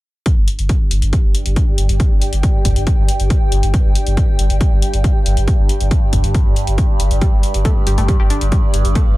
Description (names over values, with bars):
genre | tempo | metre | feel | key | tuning
driving peak-time techno | 138 BPM | 4/4 | straight | unclear | A4 = 439 Hz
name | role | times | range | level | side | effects
overtone-sweeping drone | drone | 0.5-9.2 s | G2 | -26 LUFS | equal | chorus, built-in reverb, phaser, sidechain pumping
electronic hi-hat | drums | 0.3-9.0 s | none | -26 LUFS | left 4 dB | sidechain pumping on hats
electronic kick drum | drums | 0.3-9.0 s | none | -15 LUFS | equal | none
granular cloud pad | texture | 0.9-9.2 s | G4 to G5 | -27 LUFS | right 1 dB | built-in reverb, sidechain pumping
saturated sub bass | bass | 0.4-9.2 s | G1 | -17 LUFS | equal | tube saturation, sidechain pumping, low-pass filter
analog pluck | riff | 7.2-9.0 s | G3 to G4 | -25 LUFS | equal | chorus, overdrive, sidechain pumping, tape echo
room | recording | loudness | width
digital ambience | none | -13 LUFS | side -18 dB against mid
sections
0.3-9.2 A section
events
none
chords
0.3 G5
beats
| 0.26 0.69 1.13 1.56 | 2.00 2.43 2.87 3.30 | 3.74 4.17 4.61 5.04 | 5.48 5.91 6.35 6.78 | 7.21 7.65 8.09 8.52 | 8.96